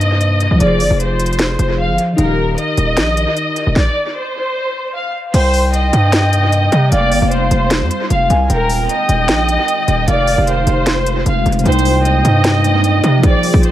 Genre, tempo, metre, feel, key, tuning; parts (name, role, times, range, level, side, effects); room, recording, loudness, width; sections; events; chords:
hip hop, trap; 152 BPM; 4/4; half-time; C minor; A4 = 439 Hz
clear symphonic violin section; melody; 0.0-13.7 s; Bb4 to F5; -18 LUFS; equal; low-pass filter, dub echo
glassy digital keys; accompaniment; 0.0-3.8, 11.6-13.7 s; C3 to C5; -18 LUFS; equal; chorus, low-pass filter
distorted 808-style bass; bass; 0.0-13.2 s; Eb1 to C3; -15 LUFS; equal; distortion
trap drum kit; drums; 0.0-13.7 s; crash cymbal, hi-hat, kick drum, snare drum; -19 LUFS; equal; dub echo
breathy flute-like synth lead; second line; 5.3-13.2 s; F5 to Ab5; -20 LUFS; right 2 dB; chorus, dub echo
ethereal airy pad; sustained chords; 5.8-13.7 s; C3 to Bb4; -23 LUFS; right 1 dB; ensemble chorus, built-in reverb, phaser
digital ambience; echo-heavy mix, vinyl crackle; -12 LUFS; side -13 dB against mid
0.0-5.3 A section; 5.3-13.7 B section
stop 3.8-5.3
0.0 Cm7; 0.6 Fm; 2.2 Eb; 3.8 N.C.; 5.3 Cm7; 6.9 Fm; 8.5 Eb; 10.1 Fm; 11.7 Cm7